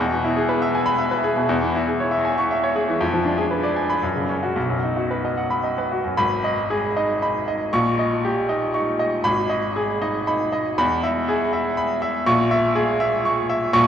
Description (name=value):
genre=classical, virtuoso piano study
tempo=110-124 BPM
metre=3/4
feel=rubato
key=B major, G# minor from 6.2 s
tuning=A4 = 442 Hz
part: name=bright grand piano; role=solo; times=0.0-13.9 s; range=G#1 to C#6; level=-19 LUFS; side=equal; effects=none
room=wet church reverb, RT60 3.7 s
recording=worn, warbling old tape, cassette tape, warbly pitch drift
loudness=-19 LUFS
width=side -9 dB against mid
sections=0.0-6.2 A section; 6.2-13.9 B section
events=none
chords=0.0 E; 1.5 C#m/E; 3.0 Fdim7; 4.0 F#5; 4.6 B; 6.2 G#m; 7.7 D#7/A#; 9.2 G#m; 10.8 E; 12.3 A#m7b5